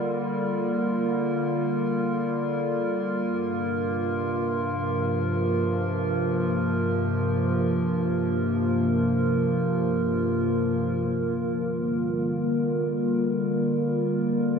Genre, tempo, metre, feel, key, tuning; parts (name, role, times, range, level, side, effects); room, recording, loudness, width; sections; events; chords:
ambient; free time; G minor; A4 = 440 Hz
warbly tape-like pad; solo; 0.0-14.6 s; G2 to Bb4; -23 LUFS; equal; chorus, built-in reverb, ping-pong delay
wet cathedral reverb, RT60 5.0 s; dreamy mix soaked in reverb; -23 LUFS; side -6 dB against mid
0.0-11.1 A section; 11.1-14.6 B section
0.0 Gm7; 3.2 Fsus4/G; 11.1 Gm7